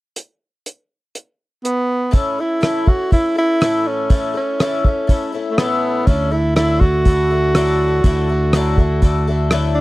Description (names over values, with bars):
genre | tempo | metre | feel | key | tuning
folk rock and heartland rock | 122 BPM | 4/4 | straight | A major | A4 = 441 Hz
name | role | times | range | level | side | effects
cloth-damped thuddy drum kit | drums | 0.2-9.6 s | hi-hat, kick drum, rim click | -14 LUFS | equal | none
clear tenor saxophone | melody | 1.6-9.8 s | A3 to F#4 | -18 LUFS | right 1 dB | none
picked twelve-string acoustic guitar | accompaniment | 2.1-9.8 s | A2 to A4 | -23 LUFS | left 6 dB | none
fingered electric bass | bass | 6.1-9.8 s | D2 | -18 LUFS | equal | none
room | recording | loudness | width
little or no reverb | dry, close 1970s-style studio recording | -14 LUFS | side -18 dB against mid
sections
0.2-2.1 A section; 2.1-9.8 B section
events
none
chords
0.2 N.C.; 2.1 A; 6.1 Dadd9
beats
| 0.16 0.65 1.15 1.64 | 2.14 2.63 3.12 3.62 | 4.11 4.60 5.09 5.58 | 6.08 6.57 7.06 7.55 | 8.04 8.53 9.02 9.51